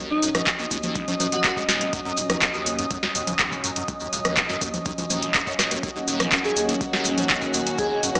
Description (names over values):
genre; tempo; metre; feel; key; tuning
acid house; 123 BPM; 4/4; straight; Eb minor; A4 = 440 Hz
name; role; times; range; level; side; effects
liquid acid bass; riff; 0.0-8.2 s; Eb1 to Gb2; -30 LUFS; equal; phaser, ensemble chorus, tape echo
warbly tape-like pad; texture; 0.0-8.2 s; Gb3 to Eb6; -28 LUFS; equal; chorus, built-in reverb, sidechain pumping
airy dreamy lead; melody; 0.1-1.5, 6.4-8.0 s; Eb4 to Ab4; -27 LUFS; equal; chorus, phaser, vintage 12-bit sampler grit, tape echo
saturated sub bass; bass; 0.2-8.2 s; Eb1 to Eb2; -37 LUFS; equal; tube saturation, sidechain pumping
booming analog drum machine; drums; 0.2-8.2 s; congas, handclaps, hi-hat, rim click, snare drum; -23 LUFS; equal; none
maracas; percussion; 0.2-8.2 s; none; -32 LUFS; equal; none
electronic kick drum; drums; 0.5-7.9 s; none; -35 LUFS; equal; overdrive
warm symphonic string section; sustained chords; 5.8-8.2 s; Eb3 to Gb4; -29 LUFS; equal; sidechain pumping
room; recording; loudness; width
moderate digital room reverb, RT60 1.3 s; dry, gritty hardware recording, cassette tape, small speaker sound; -20 LUFS; side -24 dB against mid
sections
0.0-8.2 A section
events
none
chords
0.0 Ebm7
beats
0.47 0.96 1.44 | 1.93 2.42 2.91 3.40 | 3.88 4.37 4.86 5.35 | 5.83 6.32 6.81 7.30 | 7.79